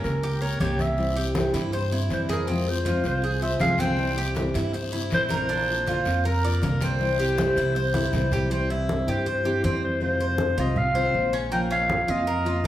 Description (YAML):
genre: latin, Cuban son and guajira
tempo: 159 BPM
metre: 4/4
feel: straight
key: unclear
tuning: A4 = 441 Hz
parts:
  - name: growling clarinet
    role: melody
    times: 0.0-12.7 s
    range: Ab4 to G5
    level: -27 LUFS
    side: right 1 dB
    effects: none
  - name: picked steel-string acoustic guitar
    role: accompaniment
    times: 0.0-12.7 s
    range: C3 to G4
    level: -30 LUFS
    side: left 2 dB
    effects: none
  - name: Cuban tres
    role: arpeggios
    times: 0.0-12.6 s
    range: Bb3 to D5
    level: -29 LUFS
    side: equal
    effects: none
  - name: upright bass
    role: bass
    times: 0.0-12.7 s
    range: Bb1 to G2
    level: -28 LUFS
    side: equal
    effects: none
  - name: congas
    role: percussion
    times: 0.0-12.7 s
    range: none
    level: -32 LUFS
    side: left 1 dB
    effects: none
  - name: guiro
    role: percussion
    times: 0.0-8.5 s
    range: none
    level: -39 LUFS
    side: left 4 dB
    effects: none
room: wet large studio reverb, RT60 1.3 s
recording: heard from further back in the room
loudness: -22 LUFS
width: side -13 dB against mid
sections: 0.0-8.5 A section; 8.5-12.7 B section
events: drum fill 7.9-8.5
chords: 0.0 Gdim; 1.0 C; 2.5 Fm; 4.0 C; 5.5 Bb; 7.0 C; 10.0 Fm7; 11.5 Bbm